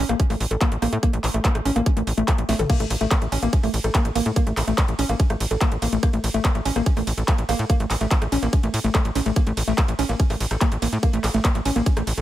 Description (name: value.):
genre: psychedelic trance.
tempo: 144 BPM.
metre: 4/4.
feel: straight.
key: unclear.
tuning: A4 = 440 Hz.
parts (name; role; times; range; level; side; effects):
woody wave-folded pluck; riff; 0.0-12.2 s; A3 to A4; -25 LUFS; moving between left 3 dB and right 5 dB; chorus, auto-pan, sidechain pumping, digital delay.
tight sequencer bass; bass; 0.0-12.2 s; A1 to A2; -24 LUFS; equal; none.
drum and bass drum kit; drums; 0.1-12.2 s; crash cymbal, handclaps, hi-hat, ride cymbal, rim click, snare drum, toms; -28 LUFS; right 1 dB; overdrive.
electronic kick drum; drums; 0.2-11.9 s; none; -19 LUFS; equal; overdrive.
room: little or no reverb.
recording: none.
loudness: -19 LUFS.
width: side -13 dB against mid.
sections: 0.0-12.2 A section.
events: drum fill 2.5.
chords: 0.0 Gmadd9 (rootless).